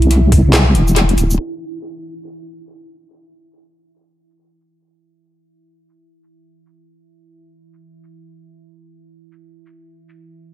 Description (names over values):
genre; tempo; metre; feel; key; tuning
deep dubstep; 140 BPM; 4/4; swing 60% on 16ths, half-time; unclear; A4 = 439 Hz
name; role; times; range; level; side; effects
deep dark ambient pad; sustained chords; 0.0-10.5 s; E4; -26 LUFS; right 3 dB; chorus, built-in reverb
deep soft wobble bass; bass; 0.0-1.4 s; D1 to C2; -11 LUFS; equal; chorus
garage drum kit; drums; 0.0-10.2 s; handclaps, hi-hat, shaker, snare drum; -18 LUFS; left 1 dB; low-pass filter on hats, low-pass filter on snare, low-pass filter on perc, tape echo
room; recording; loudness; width
little or no reverb; echo-heavy mix, low-pass filter; -11 LUFS; side -14 dB against mid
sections
0.0-1.4 A section; 1.4-10.5 B section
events
drop 0.0-1.4; filter sweep on ambient pad 1.4-10.5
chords
0.0 Cadd9; 1.4 N.C.